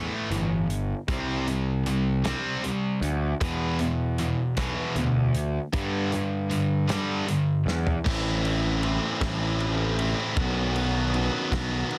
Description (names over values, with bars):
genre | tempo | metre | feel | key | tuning
quiet-loud alternative rock | 52 BPM (dotted quarters) | 6/8 | straight | A minor | A4 = 441 Hz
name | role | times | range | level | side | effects
high-gain distorted guitar | riff | 0.0-12.0 s | E2 to F#4 | -31 LUFS | equal | distortion
scooped high-gain guitar | riff | 0.0-7.6 s | E2 to C4 | -31 LUFS | equal | distortion
fuzz picked electric bass | bass | 0.0-11.8 s | G1 to G2 | -30 LUFS | equal | overdrive
loose indie drum kit | drums | 0.3-12.0 s | crash cymbal, hi-hat, kick drum, ride cymbal, snare drum, toms | -34 LUFS | equal | none
room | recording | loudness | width
light reverb | dense, heavily limited modern master | -26 LUFS | mono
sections
0.0-8.1 A section; 8.1-12.0 B section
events
drum fill 7.7-8.1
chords
0.0 A5; 1.1 C5; 3.4 E5; 5.7 G5; 8.1 Am; 10.4 B